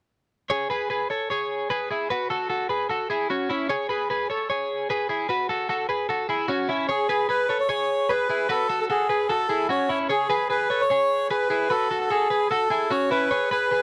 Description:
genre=indie pop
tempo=150 BPM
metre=4/4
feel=straight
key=C# minor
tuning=A4 = 441 Hz
part: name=twelve-string electric guitar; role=arpeggios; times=0.5-13.8 s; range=C#4 to C#5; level=-26 LUFS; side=equal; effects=none
part: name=melodica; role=melody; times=6.9-13.8 s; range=G#4 to C#5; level=-25 LUFS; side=equal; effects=none
room=light reverb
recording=dry, close 1970s-style studio recording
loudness=-24 LUFS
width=mono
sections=0.5-6.9 A section; 6.9-13.8 B section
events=none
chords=0.5 C#7(no3); 2.1 F#m7; 3.5 C#m7; 5.3 A6; 6.9 C#7(no3); 8.5 F#m7; 9.9 C#m7; 11.7 A6; 13.3 C#7(no3)

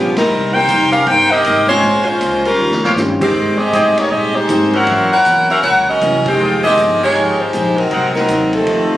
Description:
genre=jazz, big band swing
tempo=158 BPM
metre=4/4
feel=swing 64% on 8ths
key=unclear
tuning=A4 = 445 Hz
part: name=clear saxophone section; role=melody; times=0.0-9.0 s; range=Eb3 to G5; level=-12 LUFS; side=equal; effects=none
part: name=hollow-body jazz guitar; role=accompaniment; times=0.0-8.9 s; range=F2 to C5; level=-23 LUFS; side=left 2 dB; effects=none
part: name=upright bass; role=bass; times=0.0-8.7 s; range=F1 to Bb2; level=-25 LUFS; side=equal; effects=none
part: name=vintage drum kit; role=drums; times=0.2-8.8 s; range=hi-hat, kick drum, ride cymbal, snare drum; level=-25 LUFS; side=equal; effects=none
part: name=warm concert grand piano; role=accompaniment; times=0.6-6.8 s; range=G3 to G4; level=-21 LUFS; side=equal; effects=none
part: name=clear trumpet section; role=stabs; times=1.3-8.1 s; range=F4 to G5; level=-19 LUFS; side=equal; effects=none
part: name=brilliant trombone section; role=second line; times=8.5-9.0 s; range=C3 to A3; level=-19 LUFS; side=right 1 dB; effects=none
room=light reverb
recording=recorded on a phone in the room, studio reverb, compression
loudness=-11 LUFS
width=side -14 dB against mid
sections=0.0-9.0 A section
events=band accent 0.1, 3.2, 6.2; drum fill 2.6-3.0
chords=0.3 Cm7; 1.8 Bbm9; 2.6 Eb13; 3.3 Abmaj7; 4.9 Gb7#11; 6.4 Fm11; 7.9 Cm7b5

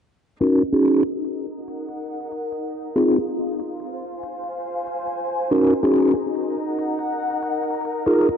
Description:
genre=glitch hop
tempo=94 BPM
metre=4/4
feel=swing 64% on 16ths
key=Eb dorian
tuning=A4 = 440 Hz
part: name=tonewheel organ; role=stabs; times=0.4-8.3 s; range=C4 to Bb4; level=-19 LUFS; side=equal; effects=chorus vibrato, slow rotary speaker, low-pass filter, ping-pong delay
part: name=electronic hi-hat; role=drums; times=0.4-8.4 s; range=none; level=-51 LUFS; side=right 3 dB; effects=none
part: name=rich studio string section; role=texture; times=0.4-8.4 s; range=Eb4 to Ab5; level=-27 LUFS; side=left 1 dB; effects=none
room=wet lush hall reverb, RT60 1.9 s, studio ambience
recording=dreamy mix soaked in reverb, low-pass filter, nothing above 10.6 kHz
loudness=-20 LUFS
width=side -8 dB against mid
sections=0.4-8.4 A section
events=fade-in on string section 0.4-8.4; filter sweep on tonewheel organ 0.4-8.4; filter sweep 0.4-8.4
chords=0.4 Ebm7; 3.0 Fm7; 5.5 Ebm7

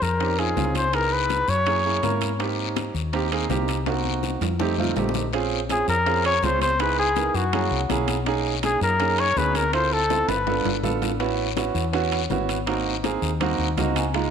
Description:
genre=Afro-Cuban jazz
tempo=164 BPM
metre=4/4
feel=straight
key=unclear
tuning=A4 = 440 Hz
part: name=breathy trumpet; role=melody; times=0.0-2.2, 5.7-10.8 s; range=Gb4 to Db5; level=-23 LUFS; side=left 2 dB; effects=tape echo
part: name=woody fretless electric bass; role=bass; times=0.0-14.3 s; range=G1 to Ab2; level=-27 LUFS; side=left 2 dB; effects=none
part: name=bongos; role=percussion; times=0.0-14.3 s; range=none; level=-35 LUFS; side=left 14 dB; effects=none
part: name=congas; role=percussion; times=0.0-14.3 s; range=none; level=-34 LUFS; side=left 14 dB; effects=none
part: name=guiro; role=percussion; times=0.0-14.3 s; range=none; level=-34 LUFS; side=left 13 dB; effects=none
part: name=warm concert grand piano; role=accompaniment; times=0.2-14.3 s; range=Ab3 to Ab5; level=-26 LUFS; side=right 7 dB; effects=none
part: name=timbales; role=percussion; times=0.2-14.3 s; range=none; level=-33 LUFS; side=right 10 dB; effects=none
room=moderate echo chamber reverb, RT60 1.8 s, studio ambience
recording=1960s-style stereo with parts hard left and right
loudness=-20 LUFS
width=side -7 dB against mid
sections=0.0-5.3 A section; 5.3-14.3 B section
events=drum fill 3.9-5.3, 10.1-11.2; grand piano fill 13.6-14.1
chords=0.0 Bbm11; 0.9 Dbm7; 1.7 Gb9; 2.4 Abmaj9; 3.9 Cm7b5; 4.6 F7; 5.3 Bbm9; 6.8 Dbm7; 7.5 Gb7; 8.3 Bmaj13; 9.7 Dm7; 10.5 G9; 11.2 A69; 12.7 Ab7

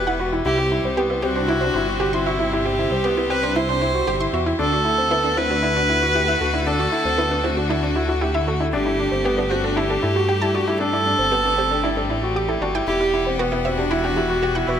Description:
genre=piano and strings electronica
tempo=116 BPM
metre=4/4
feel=straight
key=unclear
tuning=A4 = 440 Hz
part: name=warm viola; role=melody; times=0.0-14.8 s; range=E4 to C5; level=-22 LUFS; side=right 1 dB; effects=none
part: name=bright string quartet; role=sustained chords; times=0.0-14.8 s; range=C3 to F#5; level=-28 LUFS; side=left 2 dB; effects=none
part: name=analog pluck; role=arpeggios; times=0.0-14.7 s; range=D4 to D6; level=-28 LUFS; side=right 3 dB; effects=chorus, ping-pong delay
part: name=dark baby grand piano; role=riff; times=0.0-14.8 s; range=B3 to G4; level=-24 LUFS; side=left 1 dB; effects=ping-pong delay
part: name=dark detuned saw bass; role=bass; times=0.0-14.8 s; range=E1 to G2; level=-26 LUFS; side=equal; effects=none
room=moderate lush hall reverb, RT60 2.2 s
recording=none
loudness=-18 LUFS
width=side -8 dB against mid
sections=0.0-14.8 A section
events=none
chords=0.5 C; 4.6 Dadd9; 8.7 Gsus2; 12.9 Emadd9

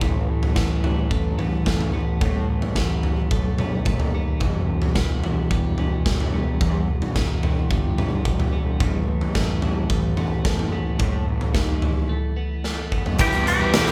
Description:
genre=quiet-loud alternative rock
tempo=109 BPM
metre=4/4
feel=straight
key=unclear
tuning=A4 = 438 Hz
part: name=twelve-string electric guitar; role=arpeggios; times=0.0-13.2 s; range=E2 to B3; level=-33 LUFS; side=equal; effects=none
part: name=fuzz picked electric bass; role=bass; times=0.0-13.9 s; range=E1 to A2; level=-29 LUFS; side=equal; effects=overdrive
part: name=big rock drum kit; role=drums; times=0.0-13.9 s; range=hi-hat, kick drum, snare drum, toms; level=-24 LUFS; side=equal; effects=none
part: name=twangy electric guitar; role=melody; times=13.2-13.9 s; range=G4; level=-23 LUFS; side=equal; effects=none
part: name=crunchy overdriven guitar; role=riff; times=13.2-13.9 s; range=E3 to B4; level=-27 LUFS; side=equal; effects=none
part: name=overdriven electric guitar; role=riff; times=13.2-13.9 s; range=E3 to B4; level=-28 LUFS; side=equal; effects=none
room=light reverb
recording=band playing live in one room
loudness=-22 LUFS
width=mono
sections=0.0-13.2 A section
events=break 12.1-13.2; drum fill 12.6-13.2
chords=0.0 Asus2; 4.4 Em; 8.8 Asus2; 13.2 Em

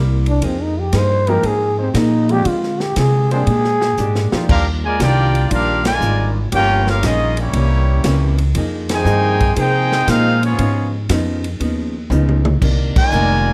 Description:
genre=jazz, big band swing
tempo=118 BPM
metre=4/4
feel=swing 68% on 8ths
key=Eb major from 4.5 s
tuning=A4 = 440 Hz
part: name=archtop guitar, miked and amplified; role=accompaniment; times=0.0-13.5 s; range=G2 to Ab4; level=-27 LUFS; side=equal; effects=none
part: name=upright bass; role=bass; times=0.0-13.5 s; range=F1 to D3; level=-20 LUFS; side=equal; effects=none
part: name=growling trombone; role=melody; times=0.3-4.4 s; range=C4 to C5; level=-21 LUFS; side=equal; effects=none
part: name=swinging big-band drum kit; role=drums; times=0.3-13.3 s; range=crash cymbal, hi-hat, kick drum, ride cymbal, snare drum, toms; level=-25 LUFS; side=equal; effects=none
part: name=warm baby grand piano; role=accompaniment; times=1.3-4.5 s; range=F3 to Ab4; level=-26 LUFS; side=equal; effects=none
part: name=warm trombone section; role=sustained chords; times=1.3-4.4 s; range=F3 to C5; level=-32 LUFS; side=equal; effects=none
part: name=warm trumpet section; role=melody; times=4.5-13.5 s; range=Bb3 to Ab5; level=-21 LUFS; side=equal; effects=none
part: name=clear trombone section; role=second line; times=4.5-13.5 s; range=Bb2 to Ab4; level=-25 LUFS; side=equal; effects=none
room=light reverb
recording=none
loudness=-16 LUFS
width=mono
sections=0.0-4.5 A section; 4.5-13.5 B section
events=trombone solo 0.0-4.5; drum fill 4.0-4.5, 12.1-12.6; band accent 5.8, 8.8, 12.9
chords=0.4 Fm11; 2.5 Dm7b5; 3.5 Bb6; 4.5 Ebmaj9; 6.5 Gm7b5; 7.5 C7b9; 8.6 Fm11; 10.6 Db9; 12.6 Cm9

